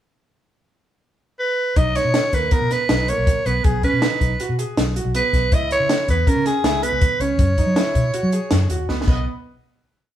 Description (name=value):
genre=progressive instrumental, band music in an uneven meter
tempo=160 BPM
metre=5/4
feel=straight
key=B major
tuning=A4 = 440 Hz
part: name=growling soprano saxophone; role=melody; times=1.4-9.3 s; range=G#4 to D#5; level=-21 LUFS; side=right 1 dB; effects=none
part: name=clear concert grand piano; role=arpeggios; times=1.8-9.2 s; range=A#3 to G#4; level=-26 LUFS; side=right 3 dB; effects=none
part: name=vintage muted fingered electric bass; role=bass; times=1.8-9.2 s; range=B1 to F#3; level=-22 LUFS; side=equal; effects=none
part: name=compact cocktail drum kit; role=drums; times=1.8-9.2 s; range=crash cymbal, hi-hat, kick drum, snare drum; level=-20 LUFS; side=equal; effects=none
room=moderate studio reverb, RT60 0.8 s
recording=band playing live in one room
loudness=-17 LUFS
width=side -11 dB against mid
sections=0.0-1.8 pickup bar; 1.8-9.3 A section; 9.3-10.2 final hit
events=drum fill 8.9-9.3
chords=0.0 N.C.; 1.8 Bmaj7; 3.6 G#m7/B; 5.5 C#m7; 7.4 F#9sus4; 9.1 B; 9.3 N.C.